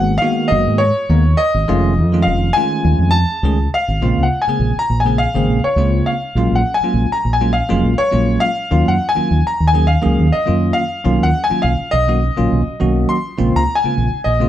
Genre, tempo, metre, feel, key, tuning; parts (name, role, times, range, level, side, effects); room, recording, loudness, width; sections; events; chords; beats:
electric jazz fusion; 102 BPM; 4/4; swing 54% on 16ths; Bb minor from 4.0 s; A4 = 440 Hz
bright concert grand piano; melody; 0.0-14.5 s; Db5 to C6; -18 LUFS; left 1 dB
bell-like tine electric piano; accompaniment; 0.0-14.5 s; Db3 to G#4; -19 LUFS; right 1 dB; medium stereo tremolo
fingered electric bass; bass; 0.0-14.5 s; F1 to Ab2; -16 LUFS; equal
moderate studio reverb, RT60 0.7 s; band playing live in one room; -13 LUFS; side -11 dB against mid
0.0-4.0 A section; 4.0-14.5 B section
0.0 Abm9; 1.7 F7alt; 4.0 Bbm9; 6.4 Gbmaj9/Bb; 8.7 Ebm7; 11.0 Bmaj9#11; 13.4 Bbm9
0.52 1.10 | 1.69 2.27 2.85 3.44 | 4.02 4.61 5.19 5.78 | 6.36 6.95 7.54 8.12 | 8.71 9.29 9.88 10.46 | 11.05 11.63 12.22 12.80 | 13.39 13.97